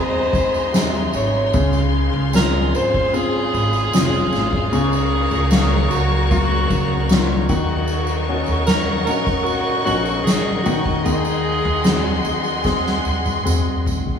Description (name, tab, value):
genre	pop ballad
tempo	76 BPM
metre	4/4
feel	straight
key	Db major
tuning	A4 = 441 Hz
part	warm alto saxophone	melody	0.0-12.6 s	Gb4 to Db5	-23 LUFS	right 1 dB	none
part	felt-muted upright piano	accompaniment	0.0-14.2 s	C3 to F5	-23 LUFS	left 3 dB	none
part	warm studio string section	sustained chords	0.0-14.2 s	Ab4 to Db6	-24 LUFS	left 1 dB	none
part	upright bass	bass	0.0-14.2 s	F1 to Eb2	-23 LUFS	right 1 dB	none
part	soft-mallet drum kit	drums	0.3-14.2 s	kick drum, ride cymbal, snare drum, toms	-22 LUFS	equal	none
part	tambourine	percussion	0.3-14.1 s	none	-36 LUFS	right 5 dB	none
room	wet large studio reverb, RT60 1.3 s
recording	band playing live in one room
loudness	-16 LUFS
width	side -7 dB against mid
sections	0.0-14.2 A section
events	drum fill 12.7-14.2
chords	0.0 Ab7/Eb; 1.5 Dbmaj7; 4.7 Gbmaj7/Db; 7.5 Ebm7; 11.1 Ab7/Eb